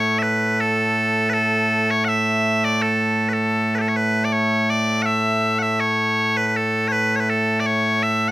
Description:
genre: scottish traditional, Scottish pipe music.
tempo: 81 BPM.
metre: 2/4.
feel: straight.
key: A major.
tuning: A4 = 441 Hz.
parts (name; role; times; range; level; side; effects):
loud bright bagpipes; solo; 0.0-8.3 s; A2 to F#5; -17 LUFS; equal; none.
room: moderate studio ambience, RT60 0.5 s.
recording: rough home demo mix.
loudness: -17 LUFS.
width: side -16 dB against mid.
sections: 0.0-4.3 A section; 4.3-8.3 B section.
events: none.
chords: none.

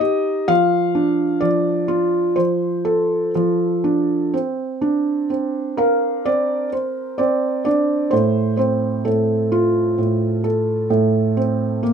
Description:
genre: children's music, lullaby.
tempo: 64 BPM.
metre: 4/4.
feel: rubato.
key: Bb major.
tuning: A4 = 440 Hz.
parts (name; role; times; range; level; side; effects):
felt-muted upright piano; solo; 0.0-11.9 s; A2 to F5; -17 LUFS; right 1 dB; none.
room: moderate small room reverb, RT60 0.5 s.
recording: minimal, uncompressed stereo recording.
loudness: -17 LUFS.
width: side -7 dB against mid.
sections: 0.0-4.3 A section; 4.3-11.9 B section.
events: none.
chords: 0.5 Dm/F; 2.4 F6; 4.3 Bbadd9; 8.1 F/A.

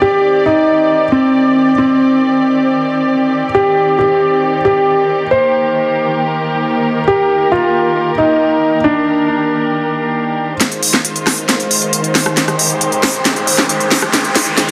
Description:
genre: uplifting trance.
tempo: 136 BPM.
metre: 4/4.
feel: straight.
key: F dorian.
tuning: A4 = 445 Hz.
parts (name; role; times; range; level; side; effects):
dark grand piano; second line; 0.0-10.5 s; C4 to C5; -15 LUFS; equal; tape echo.
muted studio string section; sustained chords; 0.0-14.7 s; Eb3 to D5; -19 LUFS; equal; none.
house drum kit; drums; 10.6-14.7 s; hi-hat, rim click, snare drum; -15 LUFS; equal; small room ambience.
riser; sound effects; 11.7-14.7 s; none; -25 LUFS; equal; none.
room: moderate lush hall reverb, RT60 1.9 s, small room ambience.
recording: dense, heavily limited modern master, high-pass filter.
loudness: -13 LUFS.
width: mono.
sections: 0.0-10.6 A section; 10.6-14.7 B section.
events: build-up 10.6-14.7; drum fill 10.6-14.7; riser 11.7-14.7.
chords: 0.0 Cmadd9; 5.3 Eb; 10.6 Fm7; 14.1 Abmaj7.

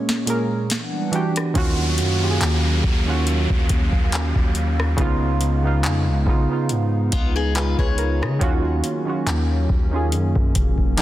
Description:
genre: contemporary R&B.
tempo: 70 BPM.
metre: 4/4.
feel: swing 54% on 16ths.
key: Eb minor.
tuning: A4 = 440 Hz.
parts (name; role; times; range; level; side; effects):
warm analog keys; accompaniment; 0.0-11.0 s; Bb2 to Db5; -24 LUFS; right 2 dB; chorus.
hollow soft pad; sustained chords; 0.0-11.0 s; Db3 to F#5; -27 LUFS; equal; chorus.
booming analog drum machine; drums; 0.1-11.0 s; handclaps, hi-hat, kick drum, rim click, snare drum; -22 LUFS; equal; soft clipping on snare.
long sustained 808-style bass; bass; 1.6-11.0 s; F1 to Db3; -22 LUFS; equal; none.
downlifter; sound effects; 1.6-8.4 s; none; -29 LUFS; equal; none.
picked steel-string acoustic guitar; arpeggios; 7.1-8.4 s; Cb4 to Db5; -28 LUFS; left 6 dB; digital delay.
room: little or no reverb.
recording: dense, heavily limited modern master.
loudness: -18 LUFS.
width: side -14 dB against mid.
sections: 0.0-1.6 A section; 1.6-11.0 B section.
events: break 0.0-1.6.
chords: 0.0 Bbm7; 0.7 Em9; 1.6 Ebm9; 5.0 Db9; 8.4 Ebm9.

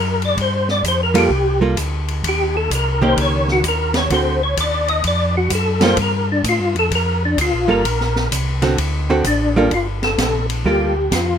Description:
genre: soul jazz organ trio.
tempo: 128 BPM.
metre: 4/4.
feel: swing 66% on 8ths.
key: unclear.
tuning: A4 = 440 Hz.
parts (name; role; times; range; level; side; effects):
percussive tonewheel organ; melody; 0.0-11.4 s; D4 to Eb5; -19 LUFS; left 1 dB; slow rotary speaker, chorus vibrato.
mellow tonewheel organ; bass; 0.0-11.4 s; G1 to A2; -21 LUFS; equal; slow rotary speaker.
open jazz drum kit; drums; 0.2-11.3 s; hi-hat, kick drum, ride cymbal, snare drum; -24 LUFS; left 1 dB; none.
archtop guitar, miked and amplified; accompaniment; 1.1-10.9 s; D3 to A4; -18 LUFS; right 3 dB; none.
room: little or no reverb.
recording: minimal, uncompressed stereo recording.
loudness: -15 LUFS.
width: side -8 dB against mid.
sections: 0.0-9.7 A section; 9.7-11.4 B section.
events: tonewheel organ solo 0.0-9.7.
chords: 0.4 Gm9; 2.2 Eb7; 4.1 D7; 6.0 Gm9; 8.8 D7; 9.7 Gm9.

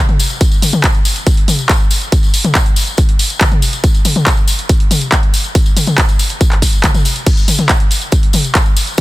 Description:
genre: trance.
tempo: 140 BPM.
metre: 4/4.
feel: straight.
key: none.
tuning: none.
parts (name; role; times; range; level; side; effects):
punchy analog drum machine; drums; 0.1-9.0 s; crash cymbal, handclaps, hi-hat, toms; -15 LUFS; equal; sidechain pumping on hats, sidechain pumping on toms, sidechain pumping on cymbals.
tambourine; percussion; 0.2-9.0 s; none; -22 LUFS; left 5 dB; none.
electronic kick drum; drums; 0.4-9.0 s; none; -12 LUFS; equal; none.
room: little or no reverb.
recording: dense, heavily limited modern master.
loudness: -10 LUFS.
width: side -18 dB against mid.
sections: 0.0-9.0 A section.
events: none.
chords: none.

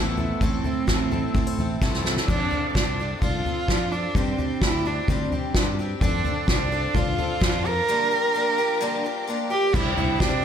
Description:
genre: indie folk with a building arrangement.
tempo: 128 BPM.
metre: 4/4.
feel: straight.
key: unclear.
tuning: A4 = 440 Hz.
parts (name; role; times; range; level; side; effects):
warm cello; melody; 0.0-10.4 s; B3 to Bb4; -25 LUFS; right 2 dB; slapback echo.
fingerpicked plugged-in steel-string acoustic guitar; accompaniment; 0.0-4.2 s; A2 to C5; -32 LUFS; right 3 dB; none.
picked twelve-string acoustic guitar; accompaniment; 0.0-10.4 s; G2 to A4; -30 LUFS; left 4 dB; slapback echo.
fingered electric bass; bass; 0.0-10.4 s; A1 to F3; -29 LUFS; equal; none.
soft-mallet drum kit; drums; 0.2-10.3 s; crash cymbal, kick drum, snare drum, toms; -24 LUFS; equal; none.
warm chamber string section; sustained chords; 6.0-10.4 s; Bb4 to D6; -34 LUFS; right 1 dB; none.
dark upright piano; accompaniment; 9.7-10.4 s; C2 to C5; -37 LUFS; right 10 dB; none.
room: moderate lush hall reverb, RT60 1.6 s.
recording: big arena sound.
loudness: -21 LUFS.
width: side -8 dB against mid.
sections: 0.0-2.3 A section; 2.3-9.7 B section.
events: drum fill 1.8-2.3.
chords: 0.0 Am; 2.3 F6; 4.2 Gsus4; 6.0 F6; 7.9 Gm7; 9.7 Cadd9.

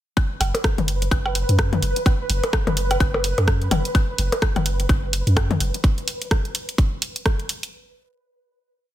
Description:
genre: minimal techno.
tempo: 127 BPM.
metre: 4/4.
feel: swing 59% on 16ths.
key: unclear.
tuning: A4 = 440 Hz.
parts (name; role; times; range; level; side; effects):
electronic kick drum; drums; 0.2-7.4 s; none; -20 LUFS; equal; studio reverb.
garage drum kit; drums; 0.2-7.7 s; hi-hat, rim click; -26 LUFS; right 1 dB; studio reverb, soft clipping on snare.
electronic percussion blips and toms; percussion; 0.2-5.6 s; none; -25 LUFS; left 3 dB; studio reverb, tape echo.
pulsing gated texture; texture; 0.8-5.8 s; B4; -30 LUFS; right 1 dB; chorus, built-in reverb, sidechain pumping.
punchy sub bass; bass; 0.4-5.7 s; F#1 to F#2; -22 LUFS; equal; sidechain pumping.
room: little or no reverb.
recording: dense, heavily limited modern master.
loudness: -19 LUFS.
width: side -13 dB against mid.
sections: 0.2-7.7 groove.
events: none.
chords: 0.2 F#sus4.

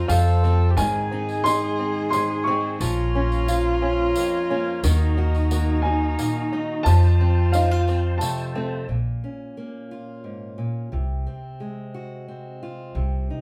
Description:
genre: acoustic folk duo or small band.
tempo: 89 BPM.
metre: 3/4.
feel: straight.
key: Bb minor.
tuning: A4 = 440 Hz.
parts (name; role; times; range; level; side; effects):
dark upright piano; melody; 0.0-8.7 s; F5 to Db6; -28 LUFS; equal; none.
warm cello; second line; 0.0-8.5 s; Eb4 to A4; -29 LUFS; equal; none.
fingerpicked steel-string acoustic guitar; accompaniment; 0.0-13.4 s; F2 to Gb4; -32 LUFS; equal; none.
tonewheel organ; sustained chords; 0.0-8.9 s; C4 to Bb5; -38 LUFS; equal; slow rotary speaker.
open-back banjo; arpeggios; 0.0-9.0 s; Eb3 to Gb4; -34 LUFS; equal; none.
upright bass; bass; 0.0-13.3 s; Bb1 to Ab2; -23 LUFS; equal; none.
tambourine; percussion; 0.1-8.5 s; none; -40 LUFS; equal; none.
room: wet studio reverb, RT60 0.6 s.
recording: band playing live in one room.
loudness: -22 LUFS.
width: mono.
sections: 0.0-8.9 A section; 8.9-13.4 B section.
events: none.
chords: 0.1 F; 0.8 Ab; 2.8 Bbm; 4.8 Ebm; 6.9 F; 8.9 Bbm; 10.9 Ab/C.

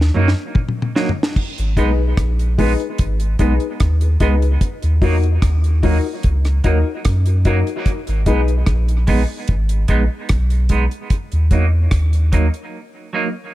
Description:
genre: dub reggae.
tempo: 74 BPM.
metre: 4/4.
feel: straight.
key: G# minor.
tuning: A4 = 440 Hz.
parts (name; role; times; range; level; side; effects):
warm sub bass; bass; 0.0-12.5 s; G#1 to F#2; -16 LUFS; equal; none.
deep reggae drum kit; drums; 0.0-12.7 s; crash cymbal, hi-hat, kick drum, rim click, snare drum, toms; -19 LUFS; equal; none.
clean electric guitar; accompaniment; 0.1-13.3 s; F#3 to D#4; -24 LUFS; right 4 dB; harmonic tremolo, tape echo.
dark baby grand piano; stabs; 1.8-8.5 s; D#4 to B4; -24 LUFS; left 8 dB; tape echo.
room: little or no reverb.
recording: echo-heavy mix.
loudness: -15 LUFS.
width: side -15 dB against mid.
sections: 0.0-1.4 A section; 1.4-13.5 B section.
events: break 0.0-1.4, 12.7-13.5; drum fill 0.0-1.4.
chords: 0.0 D#m; 1.4 G#m; 4.6 D#m; 7.9 G#m; 11.1 D#m.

